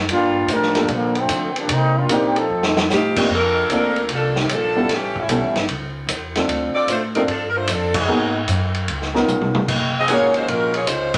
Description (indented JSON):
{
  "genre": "jazz, big band swing",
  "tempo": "150 BPM",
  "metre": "4/4",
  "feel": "swing 66% on 8ths",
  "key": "Bb major",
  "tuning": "A4 = 445 Hz",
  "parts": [
    { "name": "upright bass", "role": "bass", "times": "0.0-11.2 s", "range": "Gb1 to D3", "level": "-28 LUFS", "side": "equal", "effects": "none" },
    { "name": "bright trombone section", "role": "second line", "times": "0.1-2.9 s", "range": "D3 to Bb4", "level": "-22 LUFS", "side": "equal", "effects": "none" },
    { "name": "vintage drum kit", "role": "drums", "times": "0.1-11.2 s", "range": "crash cymbal, hi-hat, kick drum, ride cymbal, snare drum, toms", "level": "-25 LUFS", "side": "equal", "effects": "none" },
    { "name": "warm grand piano", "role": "accompaniment", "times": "0.7-10.7 s", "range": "G3 to Bb4", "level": "-24 LUFS", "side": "equal", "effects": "none" },
    { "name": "bright saxophone section", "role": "melody", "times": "2.9-11.2 s", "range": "Eb3 to Eb5", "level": "-22 LUFS", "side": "equal", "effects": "none" },
    { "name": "bright trumpet section", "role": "stabs", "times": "10.1-10.3 s", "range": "Bb4 to Ab5", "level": "-28 LUFS", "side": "equal", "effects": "none" }
  ],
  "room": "wet studio reverb, RT60 0.6 s",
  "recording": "none",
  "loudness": "-19 LUFS",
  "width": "mono",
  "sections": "0.0-3.3 A section; 3.3-11.2 B section",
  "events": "trombone section solo 0.0-3.3; drum fill 2.5-2.9, 9.3-9.7; band accent 7.9",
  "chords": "0.1 Gm7; 1.7 Cm7; 2.5 F7; 3.3 Bbmaj7; 4.9 A7; 6.5 Dm7; 8.1 Abm7; 8.9 Db7; 9.7 Gbmaj9"
}